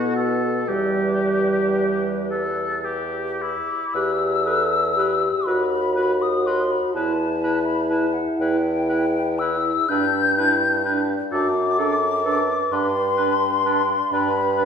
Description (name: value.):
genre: classical, slow romantic movement for wind quintet.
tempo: 36-45 BPM (dotted quarters).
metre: 6/8.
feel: rubato.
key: E minor.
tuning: A4 = 437 Hz.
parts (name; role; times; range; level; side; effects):
hollow concert flute; melody; 0.0-14.7 s; A4 to G6; -24 LUFS; left 5 dB; none.
warm oboe; second line; 0.0-14.7 s; E4 to B4; -29 LUFS; left 1 dB; none.
mellow French horn; accompaniment; 0.0-14.7 s; G3 to B4; -24 LUFS; equal; none.
warm clarinet; accompaniment; 0.0-14.7 s; D4 to G4; -29 LUFS; right 4 dB; none.
clear bassoon; bass; 0.0-14.7 s; D#2 to B2; -26 LUFS; right 1 dB; none.
room: wet scoring stage reverb, RT60 1.6 s.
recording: heard from further back in the room.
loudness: -19 LUFS.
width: side -7 dB against mid.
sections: 0.0-3.9 A section; 3.9-14.7 A section.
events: none.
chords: 0.0 B5; 0.7 Em; 5.5 B/D#; 7.0 Em; 9.9 G; 11.3 D/F#; 12.7 G.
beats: | 0.69 2.31 | 3.95 5.47 | 6.95 8.40 | 9.90 11.33 | 12.72 14.12.